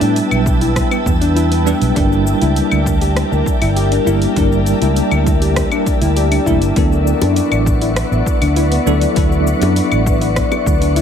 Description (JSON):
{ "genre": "sunset chillout", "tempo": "100 BPM", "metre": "4/4", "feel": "straight", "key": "D major", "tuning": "A4 = 438 Hz", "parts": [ { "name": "bell-like tine electric piano", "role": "accompaniment", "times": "0.0-11.0 s", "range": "F#3 to B4", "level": "-19 LUFS", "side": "right 1 dB", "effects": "fast stereo tremolo, auto-pan, vintage 12-bit sampler grit, ping-pong delay" }, { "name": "ethereal airy pad", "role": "sustained chords", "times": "0.0-11.0 s", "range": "Bb4 to E6", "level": "-21 LUFS", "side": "left 3 dB", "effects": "ensemble chorus, built-in reverb" }, { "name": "soft round pluck", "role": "arpeggios", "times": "0.0-11.0 s", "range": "B3 to G4", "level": "-21 LUFS", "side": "left 2 dB", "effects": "wide subtle chorus, ping-pong delay" }, { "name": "fretless electric bass", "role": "bass", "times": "0.0-11.0 s", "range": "E1 to A2", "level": "-16 LUFS", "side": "equal", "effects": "none" }, { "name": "deep house drum kit", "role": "drums", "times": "0.0-11.0 s", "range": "cabasa, claves, hi-hat, rim click", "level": "-24 LUFS", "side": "left 2 dB", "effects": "overdrive" }, { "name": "wind-like tuned noise texture", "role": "texture", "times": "0.0-11.0 s", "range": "A5 to C#6", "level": "-30 LUFS", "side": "right 2 dB", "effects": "built-in reverb" }, { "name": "electronic kick drum", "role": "drums", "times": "0.5-10.8 s", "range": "none", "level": "-18 LUFS", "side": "equal", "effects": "overdrive" }, { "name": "bongos", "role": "percussion", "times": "7.2-10.6 s", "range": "none", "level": "-25 LUFS", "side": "left 6 dB", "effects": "none" } ], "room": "light reverb, digital ambience", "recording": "none", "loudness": "-12 LUFS", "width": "side -8 dB against mid", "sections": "0.0-11.0 A section", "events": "none", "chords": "0.0 Em7; 2.0 Gm6; 6.8 D69" }